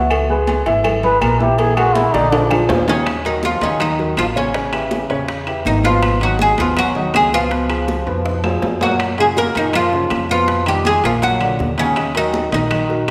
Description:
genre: Afro-Cuban jazz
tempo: 162 BPM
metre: 4/4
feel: straight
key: Eb minor from 3.1 s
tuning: A4 = 441 Hz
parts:
  - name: clear trombone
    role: second line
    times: 0.0-13.1 s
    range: Db3 to B4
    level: -25 LUFS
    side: equal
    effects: none
  - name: warm baby grand piano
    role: accompaniment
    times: 0.0-13.1 s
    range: Bb2 to E5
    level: -24 LUFS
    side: equal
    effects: none
  - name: upright bass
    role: bass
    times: 0.0-13.1 s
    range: G#1 to Gb2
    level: -25 LUFS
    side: equal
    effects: none
  - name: agogo bells and timbales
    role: percussion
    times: 0.1-13.1 s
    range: none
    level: -28 LUFS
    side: equal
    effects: none
  - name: claves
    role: percussion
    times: 0.1-13.1 s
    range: none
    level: -33 LUFS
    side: equal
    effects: none
  - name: congas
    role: percussion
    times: 0.1-13.1 s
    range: none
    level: -29 LUFS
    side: equal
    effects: none
  - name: cowbell and bongos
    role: percussion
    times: 0.1-13.1 s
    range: none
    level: -30 LUFS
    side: equal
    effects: none
  - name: oud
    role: melody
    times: 2.9-13.1 s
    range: C#4 to Bb4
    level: -20 LUFS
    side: equal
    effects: none
room: wet scoring stage reverb, RT60 1.6 s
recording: recorded in a church or concert hall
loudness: -17 LUFS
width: mono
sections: 0.0-3.1 A section; 3.1-13.1 B section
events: trombone solo 0.0-3.1; drum fill 2.0-3.1, 8.1-9.0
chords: 0.1 C#m7; 1.6 A#7#11; 2.3 A#7; 3.1 Ebm7; 4.5 A9; 6.0 Abm7; 7.5 Db7; 9.0 Gbmaj7; 10.5 Abm69; 11.2 Bb; 12.0 Ebm7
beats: | 0.11 0.48 0.85 1.22 | 1.59 1.96 2.33 2.69 | 3.06 3.43 3.80 4.17 | 4.54 4.92 5.29 5.66 | 6.03 6.40 6.77 7.14 | 7.51 7.88 8.25 8.62 | 8.99 9.37 9.74 10.11 | 10.48 10.85 11.22 11.59 | 11.96 12.34 12.71 13.08

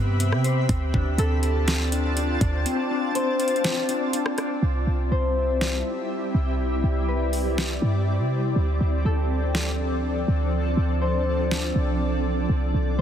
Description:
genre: hip hop, atmospheric cloud-rap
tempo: 122 BPM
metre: 4/4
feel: half-time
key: C major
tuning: A4 = 439 Hz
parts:
  - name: concert harp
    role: melody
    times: 0.0-13.0 s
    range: A4 to C5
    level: -30 LUFS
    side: left 3 dB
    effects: ping-pong delay
  - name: shimmering ambient pad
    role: sustained chords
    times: 0.0-13.0 s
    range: C3 to B5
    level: -27 LUFS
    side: equal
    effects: chorus, built-in reverb, sidechain pumping
  - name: mellow electric guitar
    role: arpeggios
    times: 0.0-4.6 s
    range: B3 to D5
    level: -30 LUFS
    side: left 4 dB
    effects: ping-pong delay
  - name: clean 808-style bass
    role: bass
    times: 0.0-13.0 s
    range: B1 to C3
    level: -23 LUFS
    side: equal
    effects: none
  - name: smooth R&B drum kit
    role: drums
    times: 0.2-11.6 s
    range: hi-hat, kick drum, rim click, snare drum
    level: -27 LUFS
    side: equal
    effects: none
room: little or no reverb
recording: heavily compressed radio sound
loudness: -21 LUFS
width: side -9 dB against mid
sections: 0.0-4.6 A section; 4.6-13.0 B section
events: kick muted 2.7-4.6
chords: 0.0 Cmaj7; 0.7 Dm7; 4.6 Cmaj7; 8.6 Dm7; 12.5 C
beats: 0.20 | 0.69 1.18 1.68 2.17 | 2.66 3.15 3.64 4.13 | 4.63 5.12 5.61 6.10 | 6.59 7.08 7.58 8.07 | 8.56 9.05 9.54 10.04 | 10.53 11.02 11.51 12.00 | 12.49 12.99

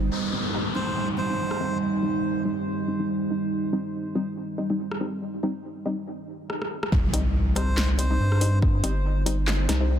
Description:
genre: deep dubstep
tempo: 141 BPM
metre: 4/4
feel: swing 56% on 16ths, half-time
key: C minor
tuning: A4 = 441 Hz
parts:
  - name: deep dark ambient pad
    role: sustained chords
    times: 0.0-10.0 s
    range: G3 to C5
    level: -30 LUFS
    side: right 3 dB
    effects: chorus, built-in reverb
  - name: saturated sub bass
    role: bass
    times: 0.0-0.1, 6.9-10.0 s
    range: G1 to G2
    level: -23 LUFS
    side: equal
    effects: none
  - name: downlifter and impact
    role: sound effects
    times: 0.1-3.5, 6.9-8.6 s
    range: none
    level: -30 LUFS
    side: equal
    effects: none
  - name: filtered dub chord stab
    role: stabs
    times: 0.3-9.9 s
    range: G3 to Eb4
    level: -31 LUFS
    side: left 2 dB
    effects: chorus, dub echo
  - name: melodica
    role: melody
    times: 0.8-1.8, 7.6-8.6 s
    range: C5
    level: -34 LUFS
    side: equal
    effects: dub echo
  - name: deep house drum kit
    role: drums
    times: 1.5-1.6, 4.9-9.8 s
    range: handclaps, hi-hat, rim click, snare drum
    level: -30 LUFS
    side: equal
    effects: overdrive
  - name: electronic kick drum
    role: drums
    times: 6.9-8.7 s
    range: none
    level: -22 LUFS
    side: equal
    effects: overdrive
room: light reverb, digital ambience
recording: dense, heavily limited modern master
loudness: -23 LUFS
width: side -9 dB against mid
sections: 0.1-6.9 A section; 6.9-10.0 B section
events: filter sweep on synth stab 0.1-6.9; break 6.1-6.9; drum fill 6.5-6.9; drop 6.9-10.0; impact 6.9-8.6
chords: 0.1 Cm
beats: | 0.11 0.54 0.96 1.39 | 1.82 2.24 2.67 3.09 | 3.52 3.94 4.37 4.79 | 5.22 5.65 6.07 6.50 | 6.92 7.35 7.77 8.20 | 8.62 9.05 9.48 9.90

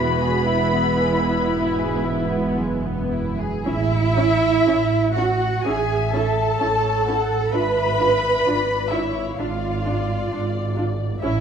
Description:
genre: classical, slow romantic movement for string orchestra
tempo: 54-66 BPM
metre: 4/4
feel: rubato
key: A major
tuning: A4 = 440 Hz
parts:
  - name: muted studio violin section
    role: melody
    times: 0.0-11.4 s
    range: C#5 to B5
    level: -28 LUFS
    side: left 4 dB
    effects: none
  - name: muted studio violin section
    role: second line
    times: 0.0-11.4 s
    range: G#3 to B5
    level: -25 LUFS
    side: left 4 dB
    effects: none
  - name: muted studio viola section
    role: accompaniment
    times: 0.0-11.3 s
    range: B3 to F#4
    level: -27 LUFS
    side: equal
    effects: none
  - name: muted studio cello section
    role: bass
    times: 0.0-11.4 s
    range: E2 to B4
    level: -23 LUFS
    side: right 4 dB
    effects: none
  - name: muted studio double bass section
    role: bass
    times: 0.0-11.4 s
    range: E1 to A1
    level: -24 LUFS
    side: right 3 dB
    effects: none
room: moderate concert hall reverb, RT60 2.1 s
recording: none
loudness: -18 LUFS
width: side -7 dB against mid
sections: 0.0-3.7 A section; 3.7-11.4 B section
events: none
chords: 0.0 E; 3.7 A; 7.5 G#dim7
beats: 0.47 1.53 2.58 | 3.66 4.66 5.65 6.60 | 7.53 8.45 9.38 10.30 | 11.21

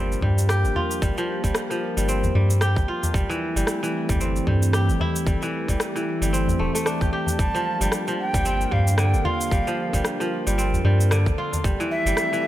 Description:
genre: organic downtempo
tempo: 113 BPM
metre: 4/4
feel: swing 58% on 16ths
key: G dorian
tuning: A4 = 440 Hz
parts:
  - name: warbly tape-like pad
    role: sustained chords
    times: 0.0-12.5 s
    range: E3 to Bb4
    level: -30 LUFS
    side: equal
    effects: chorus, built-in reverb, sidechain pumping
  - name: kora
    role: arpeggios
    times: 0.0-12.5 s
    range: D3 to G4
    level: -26 LUFS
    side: equal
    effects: digital delay
  - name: round analog bass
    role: bass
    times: 0.0-12.1 s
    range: D1 to G2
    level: -22 LUFS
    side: equal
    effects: sidechain pumping
  - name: electronic shaker and rim click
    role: drums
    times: 0.1-12.4 s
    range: none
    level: -30 LUFS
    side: equal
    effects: none
  - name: electronic kick drum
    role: drums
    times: 0.2-11.8 s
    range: none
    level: -25 LUFS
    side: equal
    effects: none
  - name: tabla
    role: percussion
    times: 0.2-12.4 s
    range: none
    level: -31 LUFS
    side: left 1 dB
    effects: none
  - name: breathy bright ney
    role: melody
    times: 7.4-12.5 s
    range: E5 to A5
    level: -26 LUFS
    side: right 1 dB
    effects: digital delay
room: light reverb, digital ambience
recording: none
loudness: -20 LUFS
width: side -14 dB against mid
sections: 0.0-12.5 A section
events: none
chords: 0.0 Gm7; 3.1 Am7/G; 7.4 Gm7; 11.6 Am7/G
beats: 0.49 | 1.02 1.55 2.08 2.61 | 3.14 3.67 4.21 4.74 | 5.27 5.80 6.33 6.86 | 7.39 7.92 8.45 8.98 | 9.52 10.05 10.58 11.11 | 11.64 12.17

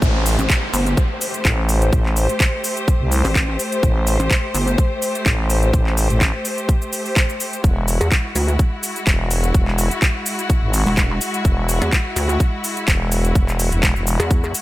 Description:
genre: bass house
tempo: 126 BPM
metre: 4/4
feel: swing 54% on 16ths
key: A dorian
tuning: A4 = 440 Hz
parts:
  - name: bright studio string section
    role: sustained chords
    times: 0.0-14.6 s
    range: G#3 to C5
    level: -24 LUFS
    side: left 1 dB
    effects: sidechain pumping
  - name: growling FM bass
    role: bass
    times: 0.0-14.2 s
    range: E1 to C2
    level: -19 LUFS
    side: equal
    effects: tube saturation, sidechain pumping
  - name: electronic kick drum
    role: drums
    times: 0.0-14.4 s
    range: none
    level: -17 LUFS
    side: equal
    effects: high-pass filter on kick
  - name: house drum kit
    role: drums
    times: 0.0-14.6 s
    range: handclaps, hi-hat, shaker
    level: -22 LUFS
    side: equal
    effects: overdrive
  - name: riser, swell and downlifter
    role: sound effects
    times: 0.0-3.8 s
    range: none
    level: -28 LUFS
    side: equal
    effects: none
  - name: pulsing pluck wobble bass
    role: bass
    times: 0.4-4.8, 8.0-14.5 s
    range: E1 to E2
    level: -18 LUFS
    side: equal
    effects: chorus, tube saturation, sidechain pumping
room: little or no reverb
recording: none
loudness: -16 LUFS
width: side -16 dB against mid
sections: 0.0-14.6 A section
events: drop 0.0-14.6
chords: 0.0 Am7; 7.6 Eadd9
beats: | 0.02 0.50 0.97 1.45 | 1.93 2.40 2.88 3.35 | 3.83 4.31 4.78 5.26 | 5.74 6.21 6.69 7.16 | 7.64 8.12 8.59 9.07 | 9.54 10.02 10.50 10.97 | 11.45 11.93 12.40 12.88 | 13.35 13.83 14.31

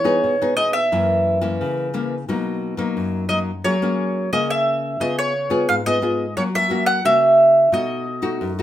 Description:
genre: samba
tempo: 88 BPM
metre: 4/4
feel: straight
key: unclear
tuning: A4 = 444 Hz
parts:
  - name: mandolin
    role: melody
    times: 0.0-8.6 s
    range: C#5 to F#5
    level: -17 LUFS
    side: right 1 dB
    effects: none
  - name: nylon-string guitar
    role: accompaniment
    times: 0.0-8.6 s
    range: F#2 to G#4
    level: -22 LUFS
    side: left 2 dB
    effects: none
room: moderate studio reverb, RT60 0.6 s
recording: minimal, uncompressed stereo recording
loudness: -17 LUFS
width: side -12 dB against mid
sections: 0.0-8.6 A section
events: none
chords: 0.0 Emaj7; 0.9 F#7; 2.3 Bmaj7; 3.6 F#add9; 5.0 C#7; 6.4 F#; 7.7 B7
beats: 0.24 | 0.92 1.60 2.28 2.96 | 3.65 4.33 5.01 5.69 | 6.37 7.05 7.73 8.41

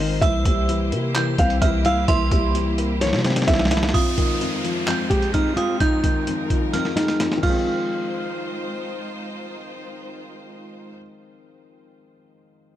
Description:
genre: hip hop, trap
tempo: 129 BPM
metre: 4/4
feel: half-time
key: F minor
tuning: A4 = 440 Hz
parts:
  - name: nylon-string guitar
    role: melody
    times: 0.0-9.0 s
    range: Eb4 to F5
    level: -25 LUFS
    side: right 1 dB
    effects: low-pass filter, digital delay
  - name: felt-muted upright piano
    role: accompaniment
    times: 0.0-12.8 s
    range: F2 to E4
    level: -27 LUFS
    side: left 5 dB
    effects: low-pass filter
  - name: clear symphonic string section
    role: sustained chords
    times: 0.0-10.9 s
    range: Ab3 to C5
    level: -32 LUFS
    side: equal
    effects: none
  - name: growling 808-style bass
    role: bass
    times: 0.0-3.9 s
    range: Ab1 to C3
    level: -23 LUFS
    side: equal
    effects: none
  - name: metallic FM bell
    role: second line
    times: 0.2-9.0 s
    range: C6 to G6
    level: -30 LUFS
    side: right 6 dB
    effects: chorus, digital delay
  - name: boom bap sampler-style drum kit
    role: drums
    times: 0.2-7.5 s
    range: crash cymbal, handclaps, hi-hat, kick drum, snare drum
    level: -22 LUFS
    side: equal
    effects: none
  - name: downlifter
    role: sound effects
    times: 3.9-7.7 s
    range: none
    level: -33 LUFS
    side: equal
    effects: none
room: digital ambience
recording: none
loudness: -18 LUFS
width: side -12 dB against mid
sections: 0.0-3.9 A section; 3.9-7.7 B section; 7.7-11.4 C section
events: drum fill 3.0-3.9, 6.7-7.7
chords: 0.2 C7; 3.9 Fm7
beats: | 0.22 0.69 1.15 1.62 | 2.08 2.55 3.01 3.48 | 3.94 4.41 4.87 5.34 | 5.80 6.27 6.73 7.20 | 7.67 8.13 8.60 9.06 | 9.53 9.99 10.46 10.92

